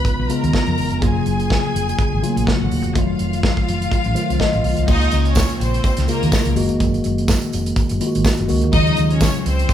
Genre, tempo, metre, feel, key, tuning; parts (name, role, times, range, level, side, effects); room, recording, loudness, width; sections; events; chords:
disco; 124 BPM; 4/4; swing 56% on 16ths; Db major; A4 = 441 Hz
clear studio string section; second line; 0.0-9.7 s; Bb3 to Cb6; -24 LUFS; left 2 dB
mellow tine electric piano; accompaniment; 0.0-9.7 s; Db3 to Eb5; -21 LUFS; left 1 dB; slow stereo tremolo
modern studio drum kit; drums; 0.0-9.7 s; crash cymbal, hi-hat, kick drum, snare drum; -20 LUFS; equal
hollow-body short-scale fingered electric bass; bass; 0.2-9.6 s; Eb1 to F2; -20 LUFS; equal
tambourine; percussion; 5.1-9.7 s; -35 LUFS; right 7 dB
light reverb; band playing live in one room; -16 LUFS; side -10 dB against mid
0.0-4.9 A section; 4.9-9.7 B section
tine electric piano fill 3.9-4.9
0.0 Db7; 1.0 Gbmaj7; 2.9 F7b9; 4.9 Db6; 6.6 Gb69; 8.7 Ebm11